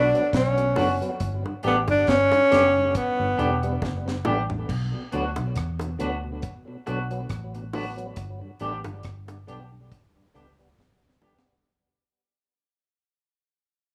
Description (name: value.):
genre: roots reggae.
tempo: 69 BPM.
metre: 4/4.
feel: swing 56% on 16ths.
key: unclear.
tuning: A4 = 441 Hz.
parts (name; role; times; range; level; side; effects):
clear tenor saxophone; melody; 0.0-3.8 s; B3 to D4; -23 LUFS; equal; tape echo.
clean electric guitar; accompaniment; 0.0-11.4 s; B3 to G4; -33 LUFS; equal; lush chorus, tape echo.
tonewheel organ; accompaniment; 0.0-11.6 s; G2 to B3; -35 LUFS; equal; overdrive, stopped rotary speaker, tape echo.
vintage muted fingered electric bass; bass; 0.0-10.8 s; E1 to E2; -32 LUFS; equal; none.
deep reggae drum kit; drums; 0.1-11.6 s; crash cymbal, hi-hat, kick drum, rim click, snare drum, toms; -33 LUFS; equal; none.
bongos; percussion; 0.8-11.4 s; none; -36 LUFS; equal; none.
room: light reverb.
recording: rough home demo mix, studio ambience.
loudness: -24 LUFS.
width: mono.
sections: 0.0-4.7 A section; 4.7-11.7 B section.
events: drum fill 3.8-4.7, 10.8-11.7; fade-out 4.7-11.7.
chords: 0.0 Bm; 1.2 G; 4.7 Bm; 8.2 G.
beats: 0.33 | 1.20 2.07 2.94 3.82 | 4.69 5.56 6.43 7.30 | 8.17 9.04 9.91 10.79.